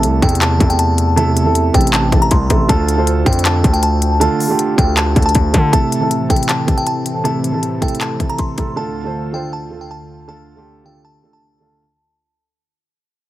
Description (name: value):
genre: hip hop, trap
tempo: 158 BPM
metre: 4/4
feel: half-time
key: A minor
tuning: A4 = 440 Hz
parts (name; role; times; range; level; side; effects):
- dark concert grand piano; accompaniment; 0.0-11.8 s; C3 to C5; -19 LUFS; right 4 dB; low-pass filter
- distorted 808-style bass; bass; 0.0-5.7 s; A1 to D3; -15 LUFS; left 1 dB; distortion
- trap drum kit; drums; 0.0-8.7 s; handclaps, hi-hat, kick drum; -16 LUFS; left 1 dB; none
- glassy synth bell; melody; 0.2-11.8 s; G5 to C6; -20 LUFS; left 1 dB; chorus, tremolo, low-pass filter, digital delay
- warm analog pad; sustained chords; 5.7-11.8 s; D2 to A4; -25 LUFS; left 3 dB; chorus
room: little or no reverb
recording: heavily compressed radio sound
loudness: -12 LUFS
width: side -14 dB against mid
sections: 0.0-5.7 A section; 5.7-11.8 B section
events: fade-out 5.7-11.8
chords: 0.0 Am; 2.7 Dm; 5.7 Am; 8.8 Dm